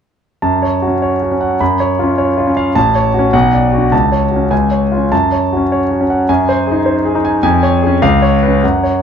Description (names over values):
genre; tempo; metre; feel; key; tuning
classical, virtuoso piano study; 103 BPM; 2/4; rubato; F# minor; A4 = 440 Hz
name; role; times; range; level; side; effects
clear concert grand piano; solo; 0.4-9.0 s; A1 to B5; -11 LUFS; equal; none
room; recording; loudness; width
moderate large studio reverb, RT60 0.9 s; dark, warm production; -11 LUFS; side -7 dB against mid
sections
0.4-9.0 A section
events
none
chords
0.4 F#m; 1.6 C#7/F#; 2.8 F#m/A; 3.3 Bm; 3.9 F#m/C#; 4.5 C#; 5.1 F#m; 6.3 G#7/F#; 7.4 C#/E#; 8.0 C#7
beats
| 0.43 1.02 | 1.60 2.18 | 2.76 3.33 | 3.92 4.51 | 5.12 5.71 | 6.28 6.86 | 7.43 8.02 | 8.63